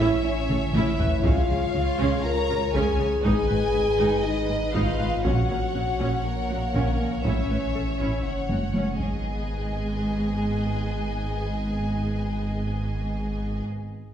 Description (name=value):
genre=cinematic, hybrid orchestral and electronic film score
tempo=120 BPM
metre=4/4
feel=straight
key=G# minor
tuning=A4 = 440 Hz
part: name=warm symphonic violin section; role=melody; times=0.0-13.6 s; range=A#4 to A#5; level=-35 LUFS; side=left 2 dB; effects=none
part: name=rich studio violin section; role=second line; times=0.0-13.6 s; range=G#4 to F#5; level=-34 LUFS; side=equal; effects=none
part: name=rich symphonic viola section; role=accompaniment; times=0.0-13.6 s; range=G#3 to B4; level=-32 LUFS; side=right 2 dB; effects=none
part: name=mellow French horn section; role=sustained chords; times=0.0-13.6 s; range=G#3 to A#4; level=-28 LUFS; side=left 2 dB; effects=none
part: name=rich symphonic cello section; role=bass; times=0.0-13.6 s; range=F#2 to C#3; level=-31 LUFS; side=right 1 dB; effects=none
part: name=saturated sub bass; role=bass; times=0.0-13.6 s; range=F#1 to C#2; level=-31 LUFS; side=equal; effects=none
part: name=warm symphonic double bass section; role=bass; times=0.0-13.6 s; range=F#1 to C#2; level=-31 LUFS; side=right 2 dB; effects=none
part: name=taiko ensemble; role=drums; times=0.5-10.0 s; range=none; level=-29 LUFS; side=equal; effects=none
room=wet recital hall reverb, RT60 1.7 s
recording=recorded in a church or concert hall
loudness=-22 LUFS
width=side -9 dB against mid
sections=0.0-9.2 A section; 9.2-13.2 B section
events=drum fill 0.5-1.2, 8.5-9.2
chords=0.0 A; 1.2 C#; 3.2 G#m; 5.2 F#/A#; 7.2 A; 8.2 F#5; 9.0 G#m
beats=0.24 0.74 | 1.24 1.74 2.24 2.74 | 3.24 3.74 4.24 4.74 | 5.24 5.74 6.24 6.74 | 7.24 7.74 8.24 8.74 | 9.24 9.74 10.24 10.74 | 11.24 11.74 12.24 12.74